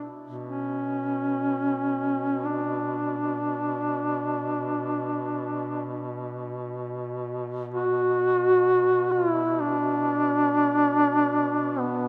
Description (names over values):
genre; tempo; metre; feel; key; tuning
caucasian folk, Caucasian lament; free time; none; none; B minor; A4 = 439 Hz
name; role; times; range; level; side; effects
mellow duduk; melody; 0.0-12.1 s; B3 to F#4; -26 LUFS; equal; none
warm duduk; drone; 0.0-12.1 s; B2; -35 LUFS; equal; none
room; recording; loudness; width
moderate church reverb, RT60 4.1 s; none; -26 LUFS; mono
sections
0.0-12.1 A section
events
none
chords
none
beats
free time